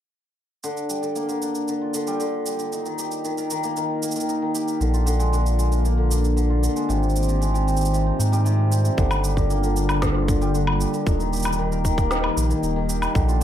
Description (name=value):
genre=folktronica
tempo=115 BPM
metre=4/4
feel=straight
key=Eb major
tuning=A4 = 441 Hz
part: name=cimbalom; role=arpeggios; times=0.6-13.4 s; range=C3 to Bb4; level=-24 LUFS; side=equal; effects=low-pass filter, digital delay, plate reverb
part: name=electronic cabasa, woodblock and snare drum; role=drums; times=0.6-13.4 s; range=none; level=-30 LUFS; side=equal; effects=overdrive
part: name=warbly tape-like pad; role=sustained chords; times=5.2-13.4 s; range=D3 to G4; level=-28 LUFS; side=equal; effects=chorus, built-in reverb, plate reverb
part: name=warm sub bass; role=bass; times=4.8-13.4 s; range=Eb1 to Ab2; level=-21 LUFS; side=equal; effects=none
part: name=electronic kick drum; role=drums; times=9.0-13.3 s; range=none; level=-23 LUFS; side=equal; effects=overdrive
room=light reverb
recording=none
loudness=-20 LUFS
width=side -10 dB against mid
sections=0.6-9.0 A section; 9.0-13.4 B section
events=none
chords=0.6 Gm7; 2.7 Eb; 4.8 Bb7; 6.9 Abmaj7; 9.0 Gm7; 11.1 Eb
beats=| 0.63 1.15 1.68 2.20 | 2.72 3.24 3.76 4.28 | 4.81 5.33 5.85 6.37 | 6.89 7.42 7.94 8.46 | 8.98 9.50 10.02 10.54 | 11.07 11.59 12.11 12.63 | 13.15